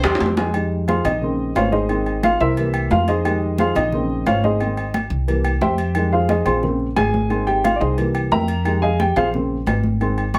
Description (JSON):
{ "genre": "latin, salsa", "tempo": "178 BPM", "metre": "4/4", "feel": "straight", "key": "F minor", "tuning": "A4 = 439 Hz", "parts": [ { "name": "dark baby grand piano", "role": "accompaniment", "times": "0.0-10.4 s", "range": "Db3 to Db6", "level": "-22 LUFS", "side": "equal", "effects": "none" }, { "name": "upright bass", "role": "bass", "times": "0.0-10.4 s", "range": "Ab1 to F2", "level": "-25 LUFS", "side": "equal", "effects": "none" }, { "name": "agogo bells and timbales", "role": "percussion", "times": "0.0-10.4 s", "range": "none", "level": "-30 LUFS", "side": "equal", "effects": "none" }, { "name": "bongos and cowbell", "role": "percussion", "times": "0.0-0.5 s", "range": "none", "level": "-25 LUFS", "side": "equal", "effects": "none" }, { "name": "congas", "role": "percussion", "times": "0.0-10.4 s", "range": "none", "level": "-28 LUFS", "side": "equal", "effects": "none" } ], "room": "moderate studio reverb, RT60 0.6 s", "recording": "none", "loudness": "-19 LUFS", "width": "mono", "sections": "0.5-10.4 A section", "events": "drum fill 0.0-0.5; grand piano solo 0.5-10.4", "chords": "0.0 C; 0.5 Fm7; 1.2 Bbmadd9; 1.9 Ab; 2.6 C7; 3.3 Fm7; 3.9 Bbmadd9; 4.6 Ab; 5.3 C7; 6.0 Fm7; 6.6 Bbmadd9; 7.3 Ab; 8.0 C7; 8.7 Fm7; 9.3 Bbmadd9", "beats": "0.21 | 0.55 0.88 1.22 1.56 | 1.90 2.24 2.58 2.91 | 3.25 3.59 3.93 4.27 | 4.61 4.94 5.28 5.62 | 5.96 6.30 6.63 6.97 | 7.31 7.65 7.99 8.32 | 8.66 9.00 9.33 9.67 | 10.01 10.35" }